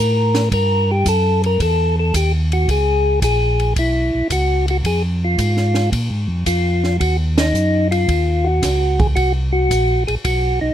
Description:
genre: soul jazz organ trio.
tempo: 111 BPM.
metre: 4/4.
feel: swing 69% on 8ths.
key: Db mixolydian.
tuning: A4 = 441 Hz.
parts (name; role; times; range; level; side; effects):
percussive tonewheel organ; melody; 0.0-10.7 s; Eb4 to Bb4; -18 LUFS; left 1 dB; slow rotary speaker.
mellow tonewheel organ; bass; 0.0-10.7 s; Bb1 to Bb2; -18 LUFS; equal; overdrive, chorus vibrato, slow rotary speaker.
compact cocktail drum kit; drums; 0.3-10.4 s; hi-hat, kick drum, ride cymbal, snare drum; -24 LUFS; right 1 dB; none.
room: little or no reverb.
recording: close, detailed microphones.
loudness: -15 LUFS.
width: side -10 dB against mid.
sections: 0.0-10.7 A section.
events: band accent 7.3.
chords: 0.0 N.C.; 0.5 Gb13b9; 2.7 Dbm7; 4.8 Fm; 5.9 Bb5; 7.0 Ebm7; 9.2 Ab9 (rootless).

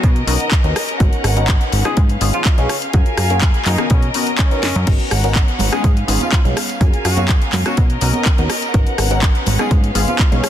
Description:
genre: filtered disco house.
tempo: 124 BPM.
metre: 4/4.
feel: straight.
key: G# dorian.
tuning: A4 = 439 Hz.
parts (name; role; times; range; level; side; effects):
mellow horn section; melody; 0.0-10.5 s; C#3 to G#4; -26 LUFS; equal; sidechain pumping, ping-pong delay.
funky polysynth comp; accompaniment; 0.0-10.4 s; A#3 to A#4; -23 LUFS; left 2 dB; chorus, phaser, sidechain pumping.
muted studio violin section; sustained chords; 0.0-10.5 s; B3 to G#5; -24 LUFS; left 1 dB; sidechain pumping.
plucky analog bass; bass; 0.0-10.4 s; G#1 to B2; -18 LUFS; equal; sidechain pumping.
electronic kick drum; drums; 0.0-10.3 s; none; -14 LUFS; equal; overdrive, small room ambience.
house drum kit; drums; 0.0-10.5 s; crash cymbal, handclaps, hi-hat, rim click, snare drum; -22 LUFS; left 1 dB; overdrive, small room ambience, sidechain pumping on hats, sidechain pumping on cymbals.
tambourine and congas; percussion; 4.9-10.5 s; none; -27 LUFS; right 5 dB; sidechain pumping on perc.
room: little or no reverb.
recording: dense, heavily limited modern master.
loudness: -13 LUFS.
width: side -11 dB against mid.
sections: 0.0-10.5 A section.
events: drum fill 4.6.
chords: 0.0 Bmaj9; 1.0 G#m11; 2.0 C#7/G#; 2.9 F#maj9; 3.9 Bmaj9; 4.9 G#m11; 5.8 C#7/G#; 6.8 F#maj9; 7.8 Bmaj9; 8.7 G#m11; 9.7 C#7/G#.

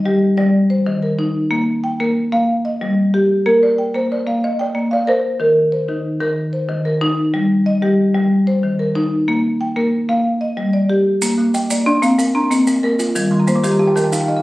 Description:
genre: southern african traditional, mbira-style interlocking cycle.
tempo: 124 BPM (dotted quarters).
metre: 12/8.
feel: straight.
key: Bb major.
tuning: A4 = 439 Hz.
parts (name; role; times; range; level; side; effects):
marimba with soft mallets; arpeggios; 0.0-14.4 s; Eb3 to Bb5; -16 LUFS; left 1 dB; none.
folk marimba with medium mallets; melody; 3.5-6.3, 11.9-14.4 s; G3 to Eb5; -16 LUFS; equal; slapback echo.
maracas; percussion; 11.2-14.3 s; none; -25 LUFS; right 2 dB; none.
kalimba; arpeggios; 11.4-14.4 s; Eb3 to D6; -22 LUFS; right 2 dB; none.
room: moderate small room reverb, RT60 0.6 s.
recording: recorded on a phone in the room, studio reverb.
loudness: -14 LUFS.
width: side -18 dB against mid.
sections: 0.0-11.2 A section; 11.2-14.4 A section.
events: kalimba fill 13.2-14.4.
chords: 0.0 G5; 0.5 Eb5; 1.5 Bb5; 2.5 Ebadd9; 3.5 Bb; 5.4 Eb5; 7.3 Eb/G; 8.3 Eb5; 9.3 Bb5; 10.2 G5; 11.2 Bb; 13.2 Eb.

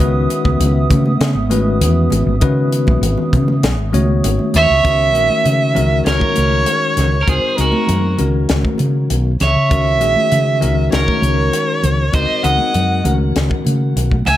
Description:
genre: electric jazz fusion.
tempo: 99 BPM.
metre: 4/4.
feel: straight.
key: C# dorian.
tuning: A4 = 440 Hz.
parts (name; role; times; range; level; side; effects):
bell-like tine electric piano; accompaniment; 0.0-14.2 s; D#3 to C#5; -20 LUFS; left 4 dB; fast stereo tremolo.
hollow soft pad; sustained chords; 0.0-4.8 s; B3 to D#6; -25 LUFS; right 5 dB; chorus, plate reverb.
woody fretless electric bass; bass; 0.0-14.4 s; G#1 to C#3; -16 LUFS; equal; none.
crisp fusion drum kit; drums; 0.0-14.4 s; hi-hat, kick drum, snare drum; -20 LUFS; equal; none.
congas; percussion; 0.4-14.4 s; none; -24 LUFS; right 2 dB; none.
dark violin; melody; 4.6-14.4 s; A#4 to G#5; -17 LUFS; right 2 dB; analog delay.
overdriven semi-hollow guitar; second line; 4.6-14.4 s; F#4 to E5; -21 LUFS; right 2 dB; none.
room: light reverb.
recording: none.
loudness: -12 LUFS.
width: side -13 dB against mid.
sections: 0.0-4.8 A section; 4.8-14.4 B section.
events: none.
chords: 0.0 C#m9; 4.8 C#m69; 6.1 F#69/C#; 7.3 G#9/C#; 8.2 G#m11/C#; 9.7 C#m69; 10.9 F#69/C#; 12.1 G#9/C#; 13.1 G#m11/C#.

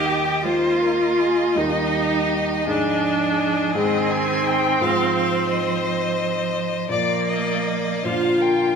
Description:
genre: classical, slow romantic movement for piano quintet.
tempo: 50-58 BPM (dotted quarters).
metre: 12/8.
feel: rubato.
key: Eb major.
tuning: A4 = 441 Hz.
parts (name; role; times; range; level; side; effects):
rich violin; melody; 0.0-8.8 s; D5 to Ab5; -27 LUFS; left 7 dB; none.
rich cello; second line; 0.0-8.8 s; D3 to Bb3; -29 LUFS; right 8 dB; none.
rich violin; second line; 0.0-8.8 s; G4 to Eb5; -28 LUFS; left 2 dB; none.
clear viola; accompaniment; 0.0-8.8 s; Bb3 to G4; -21 LUFS; right 1 dB; none.
warm concert grand piano; accompaniment; 0.0-8.8 s; Eb2 to D5; -26 LUFS; left 1 dB; none.
room: wet recital hall reverb, RT60 1.7 s.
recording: minimal, uncompressed stereo recording.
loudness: -18 LUFS.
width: side -6 dB against mid.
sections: 0.0-8.8 A section.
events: none.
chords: 0.0 Eb; 2.7 Ab; 4.8 Fm/Ab; 6.9 Bb.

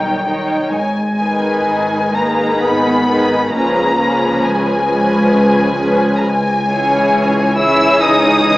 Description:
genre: classical, slow romantic movement for string orchestra.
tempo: 66 BPM.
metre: 3/4.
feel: rubato.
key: unclear.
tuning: A4 = 441 Hz.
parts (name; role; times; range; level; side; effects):
warm studio violin section; melody; 0.0-8.6 s; G5 to E6; -17 LUFS; left 1 dB; none.
warm studio violin section; second line; 0.0-8.6 s; D#4 to C#5; -18 LUFS; left 1 dB; none.
rich studio viola section; accompaniment; 0.0-8.6 s; D#3 to D#4; -19 LUFS; equal; none.
dark studio cello section; bass; 0.0-8.6 s; G3 to E4; -18 LUFS; equal; none.
warm studio double bass section; bass; 0.0-8.6 s; G#1 to C#2; -25 LUFS; right 1 dB; none.
room: moderate scoring stage reverb, RT60 2.1 s.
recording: worn, warbling old tape, cassette tape, warbly pitch drift, small speaker sound.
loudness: -12 LUFS.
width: side -18 dB against mid.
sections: 0.0-8.6 A section.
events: none.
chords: 0.0 D#7/B; 0.7 G#m; 3.5 C#7; 6.2 C#m.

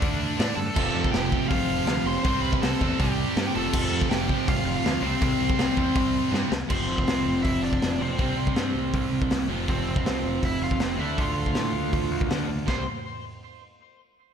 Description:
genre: punk rock.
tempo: 161 BPM.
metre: 4/4.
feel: straight.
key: unclear.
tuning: A4 = 440 Hz.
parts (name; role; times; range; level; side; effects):
biting overdriven guitar; melody; 0.0-12.9 s; C4 to C6; -30 LUFS; equal; ping-pong delay.
distorted electric guitar; riff; 0.0-12.8 s; F2 to D4; -32 LUFS; left 11 dB; distortion, slapback echo.
high-gain distorted guitar; riff; 0.0-6.5 s; F2 to D4; -31 LUFS; right 1 dB; distortion, slapback echo.
growling picked electric bass; bass; 0.0-12.8 s; F1 to A2; -31 LUFS; equal; overdrive.
raw garage drum kit; drums; 0.0-12.8 s; china cymbal, crash cymbal, hi-hat, kick drum, snare drum; -27 LUFS; equal; none.
distorted electric guitar; riff; 0.8-12.8 s; F2 to D4; -30 LUFS; right 8 dB; distortion, slapback echo.
room: moderate lush hall reverb, RT60 1.7 s.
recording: big arena sound.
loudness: -22 LUFS.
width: side -8 dB against mid.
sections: 0.0-6.7 A section; 6.7-12.7 B section; 12.7-14.2 C section.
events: drum fill 6.3-6.7.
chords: 0.0 D5; 0.8 F; 2.2 C5; 3.5 F; 5.0 C5; 6.7 F5; 8.2 C5; 9.5 F5; 11.0 Dm; 12.7 C5.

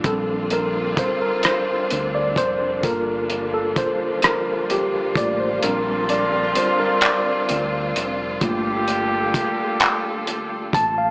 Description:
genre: slow six-eight R&B.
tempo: 43 BPM (dotted quarters).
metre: 6/8.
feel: straight.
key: G minor.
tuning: A4 = 439 Hz.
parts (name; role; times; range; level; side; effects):
mellow tine electric piano; accompaniment; 0.0-11.1 s; G3 to A5; -21 LUFS; equal; medium stereo tremolo.
warm studio string section; sustained chords; 0.0-11.1 s; D3 to A4; -27 LUFS; equal; none.
cloth-damped thuddy drum kit; drums; 0.0-11.0 s; handclaps, hi-hat, kick drum, rim click; -21 LUFS; equal; vintage 12-bit sampler grit.
deep dub fingered electric bass; bass; 0.1-11.1 s; F1 to D2; -32 LUFS; equal; none.
clear horn section; stabs; 5.6-10.7 s; D3 to G4; -24 LUFS; equal; digital delay.
room: moderate studio reverb, RT60 0.8 s.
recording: small speaker sound.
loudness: -18 LUFS.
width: side -30 dB against mid.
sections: 0.0-11.1 A section.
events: tine electric piano solo 0.0-11.1; kick muted 5.6-8.4.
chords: 0.0 Bb69; 2.8 Gm9; 5.6 Bb69; 8.4 Gm9.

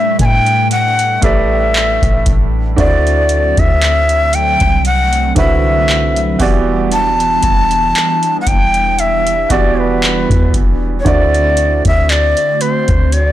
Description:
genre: contemporary R&B.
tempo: 58 BPM.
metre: 4/4.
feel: swing 54% on 16ths.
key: unclear.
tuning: A4 = 440 Hz.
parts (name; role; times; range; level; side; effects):
bright shakuhachi; melody; 0.0-13.3 s; B4 to A5; -14 LUFS; left 1 dB; none.
clear baby grand piano; accompaniment; 0.0-13.3 s; A2 to D5; -19 LUFS; right 6 dB; none.
hollow soft pad; sustained chords; 0.0-13.3 s; D3 to F#4; -22 LUFS; equal; ensemble chorus, phaser.
soft 808-style bass; bass; 0.2-13.3 s; E1 to A2; -16 LUFS; equal; none.
booming analog drum machine; drums; 0.2-13.3 s; handclaps, hi-hat, kick drum; -16 LUFS; equal; none.
room: little or no reverb.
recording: blown-out, overdriven recording, overdrive.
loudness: -10 LUFS.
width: side -13 dB against mid.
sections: 0.0-13.3 A section.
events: none.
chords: 0.0 A9sus4; 2.8 D7; 6.4 Em7; 11.1 D7.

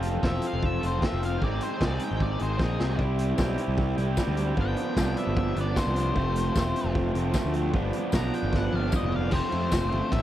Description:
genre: indie rock.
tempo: 152 BPM.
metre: 4/4.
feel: straight.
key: unclear.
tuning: A4 = 440 Hz.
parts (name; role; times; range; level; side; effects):
raw garage guitar; riff; 0.0-10.2 s; E3 to A4; -29 LUFS; right 1 dB; overdrive.
fuzz picked electric bass; bass; 0.0-10.2 s; E1 to F2; -28 LUFS; equal; overdrive.
raw garage drum kit; drums; 0.0-10.2 s; crash cymbal, hi-hat, kick drum, ride cymbal, snare drum, toms; -29 LUFS; equal; none.
octave-fuzz lead guitar; melody; 0.3-10.2 s; Ab4 to Bb5; -35 LUFS; left 3 dB; distortion, tape echo.
tambourine; percussion; 3.4-9.8 s; none; -43 LUFS; left 11 dB; none.
room: little or no reverb.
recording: dry, close 1970s-style studio recording.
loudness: -24 LUFS.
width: side -12 dB against mid.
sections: 0.0-9.3 A section.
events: lead electric guitar solo 0.0-9.3; drum fill 2.6-3.0, 8.5-9.3.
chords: 0.0 Fmaj7; 1.4 Ab; 3.0 C; 4.6 G7sus4; 6.2 F; 7.7 G7; 9.3 F.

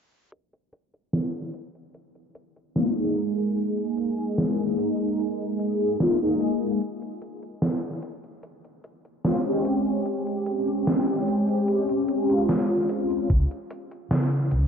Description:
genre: vaporwave.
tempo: 74 BPM.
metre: 4/4.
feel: straight.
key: unclear.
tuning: A4 = 441 Hz.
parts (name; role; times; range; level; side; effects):
gated 80s digital drum machine; drums; 0.3-14.7 s; hi-hat, snare drum; -27 LUFS; right 1 dB; gated reverb, gated reverb snare, vintage 12-bit sampler grit, small room ambience.
mellow synth brass; accompaniment; 2.7-13.3 s; Ab3 to Ab4; -23 LUFS; equal; phaser, ensemble chorus, analog delay.
hollow-body short-scale fingered electric bass; bass; 13.3-14.7 s; Db2 to Db3; -22 LUFS; equal; none.
electronic kick drum; drums; 13.3-13.5 s; none; -21 LUFS; equal; vintage 12-bit sampler grit, small room ambience.
room: light reverb.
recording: low-pass filter, nothing above 7.6 kHz.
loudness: -22 LUFS.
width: side -7 dB against mid.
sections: 0.3-14.7 A section.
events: filter sweep 0.3-14.7.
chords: 0.3 Absus2; 6.8 Dbmaj7#11/Ab; 13.3 N.C..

